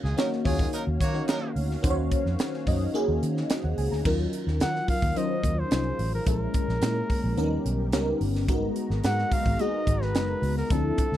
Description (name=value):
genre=polished 1980s jazz-funk pop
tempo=108 BPM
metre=4/4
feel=straight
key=unclear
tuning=A4 = 439 Hz
part: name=warm horn section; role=second line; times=0.0-1.5 s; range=Gb3 to Db5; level=-33 LUFS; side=right 2 dB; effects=none
part: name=warm analog pad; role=sustained chords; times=0.0-11.2 s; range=D3 to Bb5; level=-37 LUFS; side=right 1 dB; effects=chorus
part: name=vintage muted fingered electric bass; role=bass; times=0.0-11.2 s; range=Gb1 to Eb3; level=-28 LUFS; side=equal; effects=none
part: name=crisp fusion drum kit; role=drums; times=0.1-11.2 s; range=crash cymbal, hi-hat, kick drum, snare drum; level=-28 LUFS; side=equal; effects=none
part: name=FM electric piano with soft pad layer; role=accompaniment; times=0.2-11.2 s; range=F3 to Bb5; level=-29 LUFS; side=left 1 dB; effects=phaser, analog chorus
part: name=warm flugelhorn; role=melody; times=4.6-11.2 s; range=A4 to Gb5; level=-31 LUFS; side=equal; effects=none
room=little or no reverb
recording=none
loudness=-24 LUFS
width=side -12 dB against mid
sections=0.0-4.1 A section; 4.1-11.2 B section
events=none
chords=0.0 Ebm7; 4.1 Ebm9; 6.3 Bbm7b5; 7.4 Eb7b13; 8.5 Abm9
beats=0.18 0.73 1.28 | 1.84 2.39 2.94 3.50 | 4.05 4.61 5.16 5.71 | 6.27 6.82 7.38 7.93 | 8.49 9.04 9.60 10.15 | 10.70